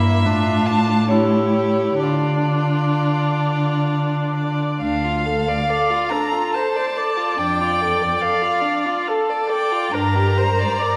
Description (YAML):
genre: classical, slow romantic movement for string quartet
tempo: 63-72 BPM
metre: 3/4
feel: rubato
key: D minor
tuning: A4 = 441 Hz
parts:
  - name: rich violin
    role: melody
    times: 0.0-11.0 s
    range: C#5 to Bb5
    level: -26 LUFS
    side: equal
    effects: none
  - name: rich violin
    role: second line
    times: 0.0-11.0 s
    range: D4 to D5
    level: -27 LUFS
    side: equal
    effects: none
  - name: rich viola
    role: accompaniment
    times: 0.0-11.0 s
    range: Bb3 to D5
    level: -24 LUFS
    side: equal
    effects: none
  - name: warm cello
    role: bass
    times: 0.0-10.7 s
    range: D2 to D3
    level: -23 LUFS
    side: equal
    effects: none
room: wet scoring stage reverb, RT60 1.8 s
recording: heard from further back in the room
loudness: -19 LUFS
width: mono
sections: 0.0-4.8 A section; 4.8-11.0 B section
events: none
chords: 0.2 Dm/A; 1.1 A7; 2.0 Dm; 7.4 Dm/F; 9.9 Gm